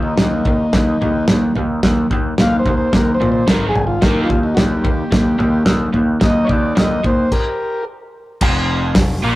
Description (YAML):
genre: garage rock duo or trio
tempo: 109 BPM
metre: 4/4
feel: straight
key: unclear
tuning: A4 = 440 Hz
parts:
  - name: overdriven combo organ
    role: melody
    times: 0.0-7.8 s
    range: D4 to F5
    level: -21 LUFS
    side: left 1 dB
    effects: spring reverb
  - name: crunchy overdriven guitar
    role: riff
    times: 0.0-9.4 s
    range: F2 to Eb4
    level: -18 LUFS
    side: equal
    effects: none
  - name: growling picked electric bass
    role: bass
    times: 0.0-9.4 s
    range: F1 to Bb2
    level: -21 LUFS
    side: equal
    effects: overdrive
  - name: cloth-damped thuddy drum kit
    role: drums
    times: 0.2-9.1 s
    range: crash cymbal, hi-hat, kick drum, snare drum, toms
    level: -17 LUFS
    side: equal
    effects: none
room: light reverb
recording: rough rehearsal-room recording, warm saturation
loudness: -13 LUFS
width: side -17 dB against mid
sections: 0.0-8.4 A section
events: stop 7.3-8.4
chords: 0.0 Eb5; 3.5 Ab5; 4.0 Eb; 7.9 N.C.; 8.4 F5